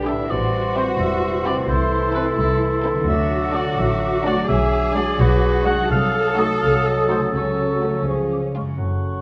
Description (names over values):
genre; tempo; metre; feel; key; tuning
cinematic, playful, whimsical film cue; 85 BPM (dotted quarters); 6/8; straight; unclear; A4 = 440 Hz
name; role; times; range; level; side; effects
mellow cor anglais; second line; 0.0-9.2 s; A4 to F#5; -28 LUFS; equal; none
mellow small flute group; second line; 0.0-9.2 s; B5 to Eb6; -32 LUFS; equal; none
warm clarinet; second line; 0.0-8.5 s; G4 to A4; -31 LUFS; equal; none
dark bassoon; accompaniment; 0.0-9.2 s; D3 to F#3; -31 LUFS; equal; none
mellow French horn section; sustained chords; 0.0-9.2 s; E3 to C5; -28 LUFS; equal; none
concert harp; arpeggios; 0.0-9.2 s; F#2 to A4; -31 LUFS; equal; none
muted studio cello section; bass; 0.0-9.2 s; F#2 to A4; -28 LUFS; equal; none
muted studio double bass section; bass; 0.0-9.2 s; E1 to D2; -26 LUFS; equal; none
muted studio violin section; melody; 0.1-8.7 s; E#4 to A4; -34 LUFS; equal; none
muted studio violin section; second line; 0.1-8.7 s; C#4 to G4; -35 LUFS; equal; none
muted studio viola section; accompaniment; 0.1-8.7 s; G#3 to D4; -33 LUFS; equal; none
room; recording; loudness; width
moderate recital hall reverb, RT60 1.6 s; none; -20 LUFS; mono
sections
0.0-8.8 A section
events
none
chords
0.3 Am7; 1.7 Am/C; 3.1 D; 4.5 G#m7b5/B; 5.9 Cdim7; 7.3 F#m/C#; 8.1 C#